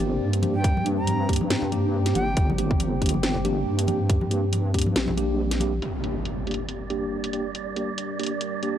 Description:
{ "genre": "deep dubstep", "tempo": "139 BPM", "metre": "4/4", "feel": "swing 57% on 16ths, half-time", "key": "G minor", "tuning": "A4 = 438 Hz", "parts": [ { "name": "deep dark ambient pad", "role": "sustained chords", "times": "0.0-8.8 s", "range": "G3 to Bb4", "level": "-31 LUFS", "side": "equal", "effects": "chorus, built-in reverb" }, { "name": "mellow tine electric piano", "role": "stabs", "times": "0.0-8.8 s", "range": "Bb3 to G4", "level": "-29 LUFS", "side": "right 1 dB", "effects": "medium stereo tremolo, low-pass filter, dub echo" }, { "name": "deep soft wobble bass", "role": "bass", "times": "0.0-5.8 s", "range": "G1 to G2", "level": "-26 LUFS", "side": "equal", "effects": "chorus" }, { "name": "garage drum kit", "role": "drums", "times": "0.0-8.7 s", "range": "hi-hat, snare drum", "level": "-29 LUFS", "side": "equal", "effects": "low-pass filter on hats, low-pass filter on snare" }, { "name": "congas", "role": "percussion", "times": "0.4-5.7 s", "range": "none", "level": "-33 LUFS", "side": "left 3 dB", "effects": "none" }, { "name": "breathy bright ney", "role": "melody", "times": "0.5-2.5 s", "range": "G5 to Bb5", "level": "-33 LUFS", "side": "equal", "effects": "dub echo" }, { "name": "electronic kick drum", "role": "drums", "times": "0.6-4.8 s", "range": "none", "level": "-23 LUFS", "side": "equal", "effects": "none" }, { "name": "impact", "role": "sound effects", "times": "5.8-7.5 s", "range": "none", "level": "-33 LUFS", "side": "equal", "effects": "none" }, { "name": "wind-like tuned noise texture", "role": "texture", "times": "6.3-8.8 s", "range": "D5", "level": "-34 LUFS", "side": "right 9 dB", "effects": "built-in reverb" } ], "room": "light reverb", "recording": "dry, gritty hardware recording", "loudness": "-22 LUFS", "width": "side -10 dB against mid", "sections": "0.0-5.8 A section; 5.8-8.8 B section", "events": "impact 5.8-7.5", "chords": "0.0 Gm", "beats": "0.21 | 0.64 1.07 1.51 1.94 | 2.37 2.80 3.23 3.66 | 4.10 4.53 4.96 5.39 | 5.82 6.25 6.69 7.12 | 7.55 7.98 8.41" }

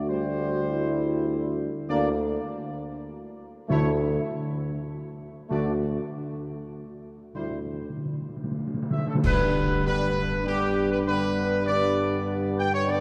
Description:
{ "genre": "classical, ceremonial fanfare", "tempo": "99 BPM", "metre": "3/4", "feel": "straight", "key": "unclear", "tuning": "A4 = 441 Hz", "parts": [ { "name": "clear trumpet section", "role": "melody", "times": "0.0-13.0 s", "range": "G4 to G5", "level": "-32 LUFS", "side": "equal", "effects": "none" }, { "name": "mellow trombone section", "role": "sustained chords", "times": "0.0-13.0 s", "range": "D3 to Bb3", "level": "-36 LUFS", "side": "equal", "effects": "none" }, { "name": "warm French horn section", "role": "sustained chords", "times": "0.0-13.0 s", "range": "B3 to F#4", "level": "-36 LUFS", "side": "equal", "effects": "none" }, { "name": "warm tuba", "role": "bass", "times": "0.0-13.0 s", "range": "D2 to G2", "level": "-32 LUFS", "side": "equal", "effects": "none" }, { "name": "timpani", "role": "percussion", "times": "3.7-9.2 s", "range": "D3", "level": "-33 LUFS", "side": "equal", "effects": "none" }, { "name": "clash cymbals and concert bass drum", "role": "percussion", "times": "9.2-10.4 s", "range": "none", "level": "-33 LUFS", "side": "equal", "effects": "none" } ], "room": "wet cathedral reverb, RT60 5.1 s", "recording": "none", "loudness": "-27 LUFS", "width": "mono", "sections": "0.0-9.2 A section; 9.2-13.0 B section", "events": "timpani fill 7.4-9.2; band accent 9.2-9.9", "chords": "0.1 C/D; 1.9 N.C.; 9.2 G", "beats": "| 0.10 0.70 1.30 | 1.89 2.49 3.09 | 3.69 4.30 4.90 | 5.50 6.11 6.73 | 7.35 7.98 8.61 | 9.24 9.86 10.46 | 11.07 11.68 12.28 | 12.87" }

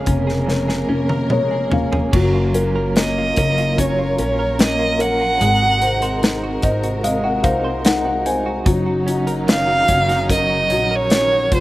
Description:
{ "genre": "pop ballad", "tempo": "74 BPM", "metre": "4/4", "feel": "straight", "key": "unclear", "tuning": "A4 = 440 Hz", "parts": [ { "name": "rich violin", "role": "melody", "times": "0.0-11.6 s", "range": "C5 to Gb5", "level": "-18 LUFS", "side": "right 2 dB", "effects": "none" }, { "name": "dark upright piano", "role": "accompaniment", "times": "0.0-11.6 s", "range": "F3 to Ab5", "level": "-22 LUFS", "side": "left 3 dB", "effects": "none" }, { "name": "warm symphonic string section", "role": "sustained chords", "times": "0.0-11.6 s", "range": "Bb2 to Bb4", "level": "-25 LUFS", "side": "left 1 dB", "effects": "none" }, { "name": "direct-recorded clean electric guitar", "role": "arpeggios", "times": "0.0-11.6 s", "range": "F2 to C5", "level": "-26 LUFS", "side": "right 4 dB", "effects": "tremolo, slapback echo" }, { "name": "upright bass", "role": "bass", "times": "0.0-11.6 s", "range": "F1 to C2", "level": "-23 LUFS", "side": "equal", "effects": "none" }, { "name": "modern studio drum kit", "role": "drums", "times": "0.1-11.6 s", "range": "crash cymbal, hi-hat, kick drum, snare drum, toms", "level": "-19 LUFS", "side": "equal", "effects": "none" } ], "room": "little or no reverb", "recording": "recorded outdoors, with no room sound", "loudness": "-15 LUFS", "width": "side -16 dB against mid", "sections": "0.0-11.6 A section", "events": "drum fill 0.5-2.1; upright piano fill 0.9-2.1, 6.2-8.7", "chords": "0.0 Bbm7/F; 2.1 Gbmaj7; 5.4 Ab7; 8.7 Ebm7/Gb", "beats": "0.48 1.30 | 2.13 2.96 3.78 4.59 | 5.41 6.22 7.04 7.85 | 8.66 9.47 10.29 11.11" }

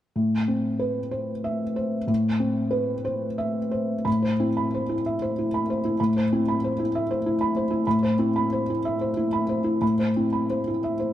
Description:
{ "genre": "neoclassical minimalist piano", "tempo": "62 BPM (dotted quarters)", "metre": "6/8", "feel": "uneven beats, rubato", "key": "A minor", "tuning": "A4 = 442 Hz", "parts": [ { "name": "felt-muted upright piano", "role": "solo", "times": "0.2-11.1 s", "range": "A2 to B5", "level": "-22 LUFS", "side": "equal", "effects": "none" } ], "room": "light reverb", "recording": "dark, warm production", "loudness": "-22 LUFS", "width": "side -12 dB against mid", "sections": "0.2-4.1 A section; 4.1-11.1 B section", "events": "none", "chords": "0.2 Amadd9", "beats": "| 0.17 1.13 | 2.09 3.06 | 4.06 5.04 | 5.98 6.92 | 7.85 8.82 | 9.82 10.84" }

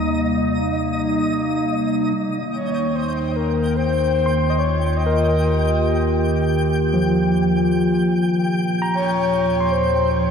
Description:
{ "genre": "ambient", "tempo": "76 BPM", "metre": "4/4", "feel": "straight", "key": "unclear", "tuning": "A4 = 444 Hz", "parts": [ { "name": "warbly tape-like pad", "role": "sustained chords", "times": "0.0-10.3 s", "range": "Bb2 to G4", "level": "-21 LUFS", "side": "left 1 dB", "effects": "chorus, built-in reverb" }, { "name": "round analog bass", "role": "bass", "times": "0.0-10.3 s", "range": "Eb2", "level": "-26 LUFS", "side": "equal", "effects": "none" }, { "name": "twinkling granular texture", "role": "texture", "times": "0.0-10.3 s", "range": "Eb5 to G6", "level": "-28 LUFS", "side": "equal", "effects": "built-in reverb" }, { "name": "breathy flute-like synth lead", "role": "melody", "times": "2.5-10.3 s", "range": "Bb4 to Eb5", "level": "-22 LUFS", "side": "left 1 dB", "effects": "wide subtle chorus, ping-pong delay" }, { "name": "overdriven tine electric piano", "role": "arpeggios", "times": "4.3-10.3 s", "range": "F3 to C6", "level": "-21 LUFS", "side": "equal", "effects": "fast tremolo, ping-pong delay" } ], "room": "wet lush hall reverb, RT60 2.9 s", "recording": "dark, warm production", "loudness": "-17 LUFS", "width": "side -6 dB against mid", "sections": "0.0-2.2 A section; 2.2-10.3 B section", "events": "none", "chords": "0.0 Cm/Eb", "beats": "0.53 1.34 | 2.15 2.96 3.76 4.56 | 5.36 6.15 6.94 7.73 | 8.52 9.31 10.10" }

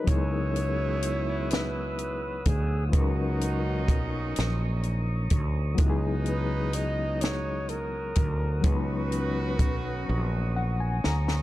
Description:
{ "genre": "slow six-eight R&B", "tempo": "42 BPM (dotted quarters)", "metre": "6/8", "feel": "straight", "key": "C# dorian", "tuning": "A4 = 440 Hz", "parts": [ { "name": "breathy flugelhorn", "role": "melody", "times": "0.0-10.5 s", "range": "E#4 to D#5", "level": "-34 LUFS", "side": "equal", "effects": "none" }, { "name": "barky reed electric piano", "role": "accompaniment", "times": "0.0-11.4 s", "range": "F#3 to A#5", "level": "-34 LUFS", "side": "left 4 dB", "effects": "overdrive, fast tremolo" }, { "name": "tonewheel organ", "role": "sustained chords", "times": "0.1-11.4 s", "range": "C#5 to E6", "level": "-40 LUFS", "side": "equal", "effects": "overdrive, slow rotary speaker" }, { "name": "warm horn section", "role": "stabs", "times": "0.1-11.0 s", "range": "A#2 to F#4", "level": "-38 LUFS", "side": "right 4 dB", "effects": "digital delay" }, { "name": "fretless electric bass", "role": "bass", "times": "0.1-11.4 s", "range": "A#1 to D2", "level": "-28 LUFS", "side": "equal", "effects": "none" }, { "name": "compact cocktail drum kit", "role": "drums", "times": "0.1-11.4 s", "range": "hi-hat, kick drum, snare drum", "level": "-26 LUFS", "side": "equal", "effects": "none" } ], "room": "small room ambience", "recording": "dark, warm production", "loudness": "-25 LUFS", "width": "side -16 dB against mid", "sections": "0.1-11.4 A section", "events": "drum fill 10.1-11.4; reed electric piano fill 10.1-11.4", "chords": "0.1 C#m11; 2.9 Bmaj9; 5.8 C#m11; 8.6 Bmaj9", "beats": "| 0.07 1.50 | 2.93 4.36 | 5.79 7.22 | 8.65 10.07" }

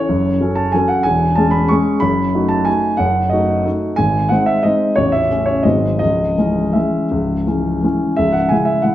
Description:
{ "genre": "classical, piano waltz", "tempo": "159-194 BPM", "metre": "3/4", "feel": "rubato", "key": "C# minor", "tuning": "A4 = 442 Hz", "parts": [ { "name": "warm concert grand piano", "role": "solo", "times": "0.0-8.9 s", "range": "A0 to C#6", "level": "-14 LUFS", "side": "equal", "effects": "none" } ], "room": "wet recital hall reverb, RT60 1.3 s", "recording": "none", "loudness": "-14 LUFS", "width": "side -13 dB against mid", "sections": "0.0-8.2 A section", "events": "none", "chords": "0.1 F#m; 1.1 C#m/E; 2.0 D#dim/F#; 4.0 G#; 5.0 A; 5.7 G#7; 6.0 C#m", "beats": "| 0.10 0.41 0.74 | 1.06 1.37 1.70 | 2.02 2.34 2.67 | 2.99 3.32 3.65 | 3.98 4.31 4.65 | 4.97 5.31 5.65 | 6.01 6.38 6.75 | 7.11 7.47 7.83 | 8.19 8.51 8.85" }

